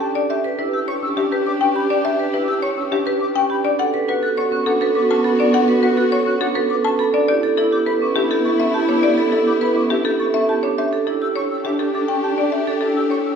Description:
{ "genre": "classical, minimalist pattern music", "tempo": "103 BPM", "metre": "3/4", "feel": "straight", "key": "D major", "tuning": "A4 = 439 Hz", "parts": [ { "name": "buzzing marimba with hard mallets", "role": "melody", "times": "0.0-13.3 s", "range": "G4 to A5", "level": "-22 LUFS", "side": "left 6 dB", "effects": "none" }, { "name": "dark clarinet", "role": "second line", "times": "0.0-13.4 s", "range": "D4 to G4", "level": "-26 LUFS", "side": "equal", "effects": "none" }, { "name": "warm symphonic string section", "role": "sustained chords", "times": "0.0-13.4 s", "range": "B3 to G4", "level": "-24 LUFS", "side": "left 1 dB", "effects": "none" }, { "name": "marimba with hard mallets", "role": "arpeggios", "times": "0.0-13.3 s", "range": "C#4 to C#5", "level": "-20 LUFS", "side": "right 5 dB", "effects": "none" }, { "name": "silver concert flute", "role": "arpeggios", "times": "0.0-13.3 s", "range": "E5 to F#6", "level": "-29 LUFS", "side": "left 3 dB", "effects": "none" } ], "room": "wet recital hall reverb, RT60 1.7 s", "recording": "heard from further back in the room", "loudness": "-16 LUFS", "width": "side -6 dB against mid", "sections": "0.0-13.4 A section", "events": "none", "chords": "0.3 Em7; 3.8 D6; 7.3 G69; 10.8 A7sus4", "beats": "| 0.29 0.88 1.46 | 2.04 2.62 3.21 | 3.79 4.37 4.95 | 5.54 6.12 6.70 | 7.28 7.87 8.45 | 9.03 9.61 10.20 | 10.78 11.36 11.94 | 12.53 13.11" }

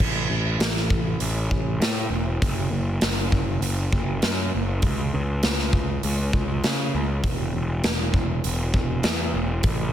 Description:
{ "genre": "quiet-loud alternative rock", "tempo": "100 BPM", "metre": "4/4", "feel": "straight", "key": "A major", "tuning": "A4 = 442 Hz", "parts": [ { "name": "fuzz picked electric bass", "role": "bass", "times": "0.0-9.9 s", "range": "E1 to C#3", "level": "-24 LUFS", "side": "equal", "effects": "overdrive" }, { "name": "big rock drum kit", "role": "drums", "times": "0.0-9.8 s", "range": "crash cymbal, hi-hat, kick drum, snare drum", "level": "-24 LUFS", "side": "equal", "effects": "soft clipping on kick" } ], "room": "little or no reverb", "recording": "dense, heavily limited modern master", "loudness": "-21 LUFS", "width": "side -11 dB against mid", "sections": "0.0-9.9 A section", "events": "none", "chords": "none", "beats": "| 0.00 0.60 1.21 1.81 | 2.42 3.02 3.63 4.23 | 4.83 5.44 6.04 6.64 | 7.24 7.84 8.44 9.04 | 9.64" }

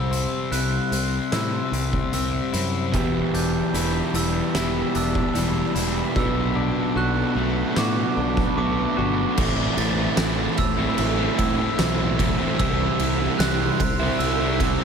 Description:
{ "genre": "post-rock", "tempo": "75 BPM", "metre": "4/4", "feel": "straight", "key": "unclear", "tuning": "A4 = 440 Hz", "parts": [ { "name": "evolving wavetable pad", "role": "sustained chords", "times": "0.0-14.8 s", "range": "G4 to C6", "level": "-34 LUFS", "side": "right 2 dB", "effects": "phaser, built-in reverb" }, { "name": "glockenspiel with brass mallets", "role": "arpeggios", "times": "0.0-14.8 s", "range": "D6 to A6", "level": "-30 LUFS", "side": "right 3 dB", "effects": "analog delay" }, { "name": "twangy electric guitar", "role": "arpeggios", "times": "0.0-9.4 s", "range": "B2 to F#4", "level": "-31 LUFS", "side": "left 3 dB", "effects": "analog delay" }, { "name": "sludgy distorted guitar", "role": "riff", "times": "0.0-14.8 s", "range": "E2 to E4", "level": "-26 LUFS", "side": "left 10 dB", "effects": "overdrive" }, { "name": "fingered electric bass", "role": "bass", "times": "0.0-14.8 s", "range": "E1 to A2", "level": "-27 LUFS", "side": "equal", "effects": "none" }, { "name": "oversized low-tuned drum kit", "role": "drums", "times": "0.1-14.8 s", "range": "crash cymbal, hi-hat, kick drum, ride cymbal, snare drum", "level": "-27 LUFS", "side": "right 1 dB", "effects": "none" }, { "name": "fuzz guitar", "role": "riff", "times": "2.9-14.8 s", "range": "A2 to G4", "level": "-26 LUFS", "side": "right 13 dB", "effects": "distortion" } ], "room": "light reverb, small room ambience", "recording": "none", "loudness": "-20 LUFS", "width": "side -6 dB against mid", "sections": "0.0-9.4 A section; 9.4-14.8 B section", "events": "build-up 0.0-9.4", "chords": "0.0 C; 2.9 Em7; 6.2 Bm7; 9.4 Amadd9; 12.6 C", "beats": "0.52 1.33 2.14 | 2.94 3.75 4.55 5.36 | 6.16 6.97 7.77 8.58 | 9.38 10.18 10.99 11.79 | 12.59 13.39 14.20" }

